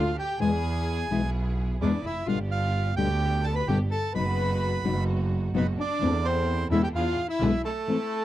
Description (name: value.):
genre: tango.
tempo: 129 BPM.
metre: 4/4.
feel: rubato.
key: unclear.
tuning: A4 = 440 Hz.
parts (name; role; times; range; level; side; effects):
bandoneon; melody; 0.0-8.2 s; A4 to B5; -31 LUFS; right 5 dB; none.
warm studio violin section; second line; 0.0-8.2 s; A3 to B4; -32 LUFS; left 4 dB; none.
nylon-string guitar; accompaniment; 0.0-8.0 s; B2 to G4; -26 LUFS; left 4 dB; none.
clear studio string section; stabs; 0.0-8.2 s; B3 to A4; -39 LUFS; right 2 dB; none.
bright double bass; bass; 0.0-7.6 s; F1 to E2; -27 LUFS; right 1 dB; none.
room: little or no reverb.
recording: dry, close 1970s-style studio recording.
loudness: -24 LUFS.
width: side -13 dB against mid.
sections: 0.0-8.2 A section.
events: none.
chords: 0.4 E; 2.3 G; 4.1 B/F#; 6.0 Am/E; 6.9 E7.